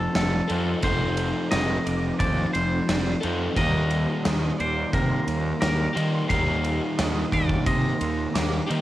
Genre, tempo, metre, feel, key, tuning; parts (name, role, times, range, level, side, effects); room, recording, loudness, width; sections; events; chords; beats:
rock, shoegaze and dream pop; 88 BPM; 4/4; straight; A4 = 440 Hz
twangy electric guitar; melody; 0.0-8.7 s; A4 to F5; -29 LUFS; equal; cassette tape, analog delay
electric guitar at the edge of break-up; arpeggios; 0.0-8.8 s; Bb4 to D6; -37 LUFS; right 3 dB; ensemble chorus, analog delay
crunchy overdriven guitar; riff; 0.0-8.8 s; Eb3 to A4; -32 LUFS; right 7 dB; reverse reverb
overdriven semi-hollow guitar; riff; 0.0-8.8 s; Eb3 to A4; -28 LUFS; left 4 dB; wide subtle chorus
fuzz fingered electric bass; bass; 0.0-8.8 s; F1 to Eb3; -27 LUFS; equal; overdrive
gated 80s drum kit; drums; 0.2-8.8 s; kick drum, ride cymbal, snare drum; -28 LUFS; equal; cassette tape
light reverb; home recording on cassette; -22 LUFS; side -14 dB against mid
0.0-8.8 A section
0.0 F7; 3.6 Ebmaj7
0.15 | 0.84 1.52 2.20 2.88 | 3.57 4.25 4.93 5.62 | 6.30 6.99 7.67 8.35